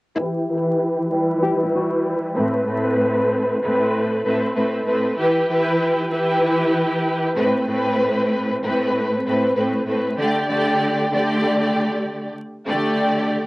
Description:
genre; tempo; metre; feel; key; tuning
hip hop; 96 BPM; 4/4; swing 62% on 16ths; E minor; A4 = 440 Hz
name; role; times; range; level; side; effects
nylon-string guitar; melody; 0.2-2.0 s; E4 to G4; -26 LUFS; left 2 dB; high-pass filter, low-pass filter, cassette tape, analog delay
warm symphonic string section; accompaniment; 0.2-13.5 s; A2 to D5; -18 LUFS; equal; cassette tape, high-pass filter, low-pass filter
room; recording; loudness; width
moderate booth ambience, RT60 0.2 s; home recording on cassette, vinyl crackle; -18 LUFS; side -21 dB against mid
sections
0.2-5.2 A section; 5.2-13.5 B section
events
filter sweep 0.2-5.2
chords
0.2 Em; 2.4 Amadd9; 5.2 Em; 7.4 Amadd9; 10.2 Dsus4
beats
| 0.18 0.81 1.43 2.06 | 2.68 3.31 3.93 4.56 | 5.18 5.81 6.43 7.06 | 7.68 8.31 8.93 9.56 | 10.18 10.81 11.43 12.06 | 12.68 13.31

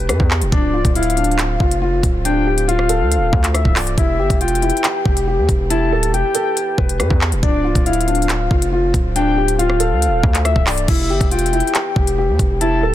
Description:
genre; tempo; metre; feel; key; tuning
hip hop, drill; 139 BPM; 4/4; half-time; E phrygian; A4 = 441 Hz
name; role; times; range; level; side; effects
dark grand piano; melody; 0.0-12.9 s; D4 to B4; -20 LUFS; left 1 dB; ping-pong delay
soft octave-layered synth lead; second line; 0.0-12.9 s; D5 to A5; -23 LUFS; left 4 dB; chorus, ping-pong delay
dark French horn section; sustained chords; 0.0-12.9 s; D3 to G4; -27 LUFS; right 1 dB; none
distorted 808-style bass; bass; 0.0-12.9 s; C1 to G2; -19 LUFS; equal; distortion
drill drum kit; drums; 0.1-12.7 s; crash cymbal, handclaps, hi-hat, kick drum, rim click; -18 LUFS; equal; none
room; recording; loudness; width
digital ambience; dense, heavily limited modern master; -14 LUFS; side -13 dB against mid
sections
0.0-10.9 A section; 10.9-12.9 A section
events
none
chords
0.0 Em; 0.5 Dm7; 4.0 Em; 7.4 Dm7; 10.9 Em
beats
0.09 | 0.52 0.95 1.39 1.82 | 2.25 2.68 3.11 3.54 | 3.98 4.41 4.84 5.27 | 5.70 6.13 6.57 7.00 | 7.43 7.86 8.29 8.72 | 9.16 9.59 10.02 10.45 | 10.88 11.31 11.75 12.18 | 12.61

